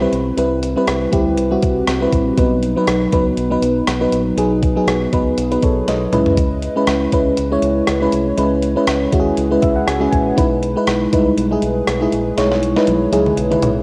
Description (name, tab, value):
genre	1980s-style pop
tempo	120 BPM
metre	4/4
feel	swing 55% on 16ths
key	E major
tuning	A4 = 441 Hz
part	FM electric piano with soft pad layer	accompaniment	0.0-13.8 s	F#3 to G#5	-18 LUFS	equal	chorus
part	fingered electric bass with an envelope filter	bass	0.0-13.8 s	A#1 to D#2	-26 LUFS	equal	none
part	clean 12-bit digital drum machine	drums	0.1-13.8 s	hi-hat, kick drum, rim click, snare drum, toms	-23 LUFS	equal	cassette tape
room	moderate lush hall reverb, RT60 1.9 s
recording	home recording on cassette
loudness	-16 LUFS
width	mono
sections	0.0-13.8 A section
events	drum fill 5.9-6.4, 12.4-13.8; FM electric piano fill 9.4-10.4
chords	0.0 Cmaj7; 2.4 B; 6.1 C#m7; 10.4 Emaj7